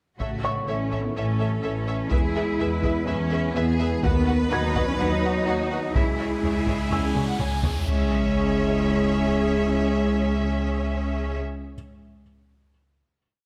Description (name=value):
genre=cinematic, hybrid orchestral and electronic film score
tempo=125 BPM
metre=4/4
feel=straight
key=C# minor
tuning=A4 = 439 Hz
part: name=warm symphonic violin section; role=melody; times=0.2-11.4 s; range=E5 to G#5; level=-37 LUFS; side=equal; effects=none
part: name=rich symphonic violin section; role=second line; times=0.2-11.4 s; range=E4 to C#5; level=-36 LUFS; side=equal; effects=none
part: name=clear symphonic viola section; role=accompaniment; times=0.2-11.4 s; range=F#4 to C#5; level=-36 LUFS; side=equal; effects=none
part: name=hollow soft pad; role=sustained chords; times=0.2-11.4 s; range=F#3 to B4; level=-34 LUFS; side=equal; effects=chorus
part: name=mellow French horn section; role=sustained chords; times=0.2-11.4 s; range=C#3 to G#3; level=-31 LUFS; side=equal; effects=none
part: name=rich symphonic cello section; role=bass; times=0.2-11.4 s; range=A3 to E4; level=-32 LUFS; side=equal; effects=none
part: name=rich symphonic double bass section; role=bass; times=0.2-11.4 s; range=A1 to E2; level=-30 LUFS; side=equal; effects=none
part: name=taiko ensemble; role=drums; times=0.2-7.9 s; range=none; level=-30 LUFS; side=equal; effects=none
part: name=felt-muted upright piano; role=texture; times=0.4-7.9 s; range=C#5 to G#6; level=-37 LUFS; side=equal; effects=tape echo
part: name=riser and sub drop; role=sound effects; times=5.7-9.8 s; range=none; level=-35 LUFS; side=equal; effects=none
room=moderate scoring stage reverb, RT60 1.6 s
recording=none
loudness=-24 LUFS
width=mono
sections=0.2-7.9 theme; 7.9-11.7 final chord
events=riser 5.7-7.9; drum fill 7.2-7.9; impact 7.9-9.8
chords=0.2 A; 2.1 E; 4.0 B/D#; 6.0 C#m